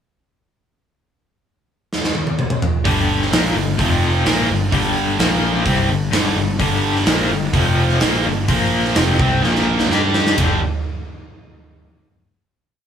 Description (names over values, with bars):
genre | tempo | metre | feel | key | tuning
hard rock | 127 BPM | 4/4 | straight | G minor | A4 = 438 Hz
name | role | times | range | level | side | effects
big rock drum kit | drums | 1.9-10.5 s | hi-hat, kick drum, ride cymbal, snare drum, toms | -19 LUFS | equal | none
cranked stack guitar | riff | 2.8-10.6 s | F2 to G4 | -21 LUFS | left 6 dB | overdrive, tremolo
tight distorted guitar | riff | 2.8-10.6 s | F2 to G4 | -21 LUFS | right 6 dB | distortion
fuzz picked electric bass | bass | 2.9-10.6 s | F1 to G2 | -21 LUFS | equal | overdrive
room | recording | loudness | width
moderate studio reverb, RT60 0.6 s | band playing live in one room | -15 LUFS | side -8 dB against mid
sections
1.0-2.8 pickup bar; 2.8-10.4 riff; 10.4-12.3 final chord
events
drum fill 1.9-2.8, 9.4-10.4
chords
1.0 N.C.; 2.8 Gm; 3.8 F5; 4.3 Gm; 5.2 Bb5; 5.7 Gm; 7.5 F5; 8.0 Gm; 8.5 Bb5; 9.0 Fsus2; 9.4 Bb5; 9.9 G5